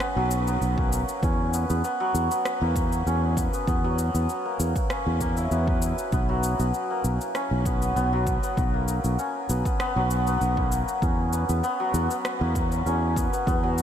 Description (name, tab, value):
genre	organic downtempo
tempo	98 BPM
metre	4/4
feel	swing 53% on 16ths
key	unclear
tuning	A4 = 440 Hz
part	santur	arpeggios	0.0-13.8 s	F#3 to B4	-27 LUFS	left 1 dB	low-pass filter, ping-pong delay
part	electronic rim click and cabasa	drums	0.0-13.8 s	none	-36 LUFS	left 1 dB	overdrive
part	sustaining fretless electric bass	bass	0.2-13.8 s	B1 to E2	-25 LUFS	equal	wide subtle chorus, sidechain pumping
part	electronic kick drum	drums	0.8-13.6 s	none	-28 LUFS	equal	overdrive
room	moderate huge ambient reverb, RT60 7.2 s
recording	dreamy mix soaked in reverb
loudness	-22 LUFS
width	side -9 dB against mid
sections	0.0-13.8 A section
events	none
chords	0.0 B5; 1.2 E5; 6.1 B5; 11.0 E5